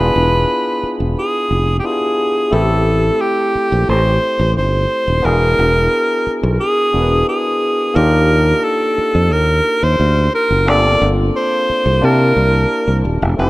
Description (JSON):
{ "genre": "lush 1970s-style soul", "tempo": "88 BPM", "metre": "4/4", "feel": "straight", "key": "unclear", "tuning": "A4 = 439 Hz", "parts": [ { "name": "breathy alto saxophone", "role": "melody", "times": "0.0-13.5 s", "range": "G4 to D5", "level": "-16 LUFS", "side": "equal", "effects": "tape echo" }, { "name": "barky tine electric piano", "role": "accompaniment", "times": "0.0-13.5 s", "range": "A3 to A5", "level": "-20 LUFS", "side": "left 1 dB", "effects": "none" }, { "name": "fingered electric bass", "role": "bass", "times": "0.0-13.5 s", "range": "Eb1 to C3", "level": "-15 LUFS", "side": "equal", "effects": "none" } ], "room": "light reverb, small room ambience", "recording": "rough home demo mix", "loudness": "-12 LUFS", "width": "side -19 dB against mid", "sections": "0.0-13.4 A section", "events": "none", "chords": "0.0 E7b9; 2.5 Am7; 5.2 E9; 8.0 Ebmaj9; 10.7 Gm11; 12.0 C13" }